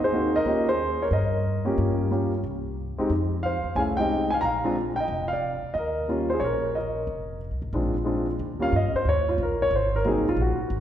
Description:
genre	jazz piano trio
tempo	182 BPM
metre	4/4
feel	swing 65% on 8ths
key	Eb mixolydian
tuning	A4 = 440 Hz
part	warm grand piano	melody	0.0-10.8 s	Gb3 to Bb5	-24 LUFS	equal	none
part	upright bass	bass	0.0-10.8 s	F1 to G2	-28 LUFS	equal	none
room	wet concert hall reverb, RT60 1.9 s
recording	recorded in a church or concert hall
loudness	-23 LUFS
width	side -10 dB against mid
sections	0.0-8.4 A section; 8.4-10.8 B section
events	grand piano solo 8.4-10.8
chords	0.5 Eb9; 1.8 Gm7b5; 2.4 N.C.; 3.1 Fm7; 4.4 Bb; 5.8 Eb7(no3); 7.1 Fm7; 7.7 Bb9; 8.4 Eb9; 9.7 Ab9

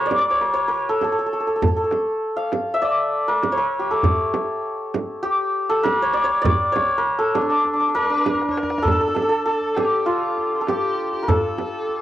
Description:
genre	Persian modal ensemble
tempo	99 BPM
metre	4/4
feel	straight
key	unclear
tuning	A4 = 439 Hz
part	santur	melody	0.0-12.0 s	D4 to F5	-19 LUFS	equal	cassette tape, plate reverb
part	frame drum	percussion	0.1-11.7 s	none	-25 LUFS	right 4 dB	none
part	tombak	percussion	0.1-12.0 s	none	-25 LUFS	equal	none
part	clear kamancheh	second line	8.0-12.0 s	F4 to C#5	-31 LUFS	left 2 dB	plate reverb
room	moderate small room reverb, RT60 0.5 s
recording	home recording on cassette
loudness	-18 LUFS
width	side -13 dB against mid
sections	0.0-8.9 A section; 8.9-12.0 B section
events	drum fill 8.3-8.9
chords	none

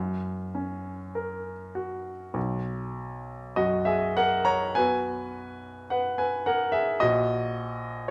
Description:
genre	classical, romantic nocturne for solo piano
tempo	49-56 BPM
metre	4/4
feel	rubato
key	B major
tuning	A4 = 440 Hz
part	clear baby grand piano	solo	0.0-8.1 s	A#1 to A#5	-28 LUFS	equal	none
room	wet recital hall reverb, RT60 1.2 s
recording	none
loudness	-28 LUFS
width	mono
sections	0.0-2.4 A section; 2.4-8.1 B section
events	none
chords	0.0 F#; 2.4 B5; 7.0 F#/A#

